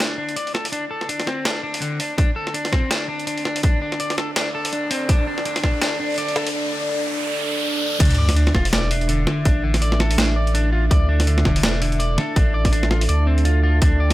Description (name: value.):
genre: half-time drum and bass.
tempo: 165 BPM.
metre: 4/4.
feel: swing 58% on 16ths, half-time.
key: unclear.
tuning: A4 = 443 Hz.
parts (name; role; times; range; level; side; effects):
dark analog pad; sustained chords; 0.0-14.1 s; D4 to G5; -28 LUFS; right 1 dB; chorus, phaser, sidechain pumping.
electric guitar at the edge of break-up; arpeggios; 0.0-14.1 s; D3 to D5; -25 LUFS; left 2 dB; vintage 12-bit sampler grit, low-pass filter, digital delay.
boom bap sampler-style drum kit; drums; 0.0-14.1 s; crash cymbal, hi-hat, snare drum; -24 LUFS; equal; high-pass filter on hats, small room ambience, high-pass filter on snare, high-pass filter on cymbals.
electronic kick drum; drums; 2.2-5.7, 8.0-13.9 s; none; -18 LUFS; equal; small room ambience.
riser and sub drop; sound effects; 4.5-9.5 s; none; -28 LUFS; equal; none.
saturated sub bass; bass; 8.0-14.1 s; E1 to D2; -19 LUFS; equal; none.
room: little or no reverb.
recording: none.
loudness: -18 LUFS.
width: side -16 dB against mid.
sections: 0.0-8.0 A section; 8.0-14.1 B section.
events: build-up 0.0-8.0; filter sweep on analog synth pad 0.0-8.0; riser 4.5-8.0; drop 8.0-14.1; impact 8.0-9.5.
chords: 0.0 D5.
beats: 0.00 0.36 | 0.73 1.09 1.46 1.82 | 2.18 2.55 2.91 3.27 | 3.64 4.00 4.37 4.73 | 5.09 5.46 5.82 6.18 | 6.55 6.91 7.27 7.64 | 8.00 8.37 8.73 9.09 | 9.46 9.82 10.18 10.55 | 10.91 11.27 11.64 12.00 | 12.37 12.73 13.09 13.46 | 13.82.